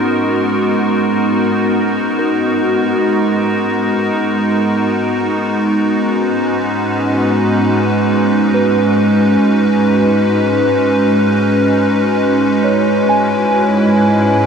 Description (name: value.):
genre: ambient.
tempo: free time.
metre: none.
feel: none.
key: unclear.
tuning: A4 = 441 Hz.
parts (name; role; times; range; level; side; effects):
evolving wavetable pad; sustained chords; 0.0-14.5 s; G#3 to B4; -12 LUFS; equal; chorus, built-in reverb.
muted felt-like synth keys; arpeggios; 0.0-14.5 s; C#4 to G#5; -22 LUFS; right 1 dB; chorus, ping-pong delay.
bright studio cello section; bass; 0.0-14.5 s; G#2; -23 LUFS; equal; none.
room: wet cathedral reverb, RT60 6.0 s.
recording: in a vast, echoing space.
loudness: -12 LUFS.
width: side -6 dB against mid.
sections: 0.0-14.5 A section.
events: fade-in on synth keys 0.0-14.5; fade-in on cello section 0.0-14.5.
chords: 0.0 G#m9; 5.4 B69/G#; 12.6 C#m7/G#.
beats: free time.